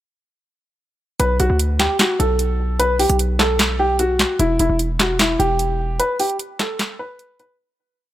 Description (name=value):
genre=hip hop, trap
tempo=150 BPM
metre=4/4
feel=half-time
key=B minor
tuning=A4 = 440 Hz
part: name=dark grand piano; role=melody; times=1.2-7.6 s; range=E4 to B4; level=-19 LUFS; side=equal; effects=none
part: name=hard-hitting 808-style bass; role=bass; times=1.2-6.0 s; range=E1 to D2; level=-20 LUFS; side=equal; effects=none
part: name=trap drum kit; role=drums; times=1.2-7.5 s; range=handclaps, hi-hat, snare drum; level=-20 LUFS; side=equal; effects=none
room=little or no reverb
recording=none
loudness=-16 LUFS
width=side -13 dB against mid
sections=1.2-7.6 verse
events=break 6.0-7.6; fade-out 6.0-7.6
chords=1.2 B5; 4.4 Em